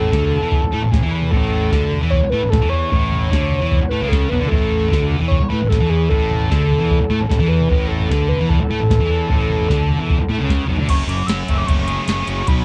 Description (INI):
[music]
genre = indie rock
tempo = 151 BPM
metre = 4/4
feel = straight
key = A major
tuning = A4 = 436 Hz
[part]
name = overdriven synth lead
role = melody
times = 0.0-12.6 s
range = G#4 to E6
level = -25 LUFS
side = equal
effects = chorus, cassette tape, analog delay
[part]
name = thick fuzz guitar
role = riff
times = 0.0-12.6 s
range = F#2 to G#4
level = -24 LUFS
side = equal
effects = distortion
[part]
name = fuzz fingered electric bass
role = bass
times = 0.0-12.6 s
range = F#1 to A2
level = -24 LUFS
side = equal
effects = overdrive
[part]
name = soft vintage rhythm box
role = drums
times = 0.0-12.6 s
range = crash cymbal, kick drum, ride cymbal, snare drum, toms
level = -21 LUFS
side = equal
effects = none
[sound]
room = little or no reverb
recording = home recording on cassette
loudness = -17 LUFS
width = mono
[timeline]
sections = 0.0-10.9 A section; 10.9-12.6 B section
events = none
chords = 0.0 A5; 10.9 F#madd9